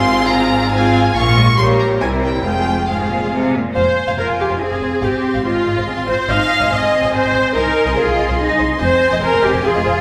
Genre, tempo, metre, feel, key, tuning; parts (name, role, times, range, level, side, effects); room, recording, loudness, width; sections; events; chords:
quick classical-period movement for string orchestra; 142 BPM; 3/4; straight; F minor; A4 = 440 Hz
rich chamber violin section; melody; 0.0-10.0 s; F5 to Db6; -25 LUFS; equal
rich chamber violin section; second line; 0.0-10.0 s; F4 to Ab5; -25 LUFS; equal
rich studio viola section; accompaniment; 0.0-10.0 s; G3 to F5; -19 LUFS; equal
clear chamber cello section; bass; 0.0-10.0 s; F2 to F4; -23 LUFS; equal
rich chamber double bass section; bass; 0.0-9.9 s; F1 to C2; -23 LUFS; equal
wet scoring stage reverb, RT60 1.7 s; recorded in a church or concert hall; -16 LUFS; mono
0.0-3.8 A section; 3.8-10.0 A section
0.0 Fm/Ab; 1.2 Bbm; 1.6 Gdim/Bb; 2.0 C7; 2.4 Fm; 5.0 Fm/Ab; 6.3 Ab; 7.6 Ab/C; 8.8 Fm